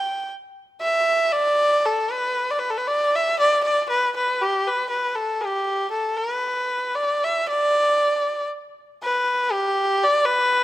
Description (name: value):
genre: chinese traditional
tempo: 59 BPM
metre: 2/4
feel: rubato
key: G gong mode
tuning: A4 = 440 Hz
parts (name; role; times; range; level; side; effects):
- rich erhu; solo; 0.0-10.6 s; G4 to G5; -19 LUFS; equal; none
room: light reverb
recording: close, detailed microphones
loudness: -19 LUFS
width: side -15 dB against mid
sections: 0.0-7.5 A section; 7.5-10.6 B section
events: none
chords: none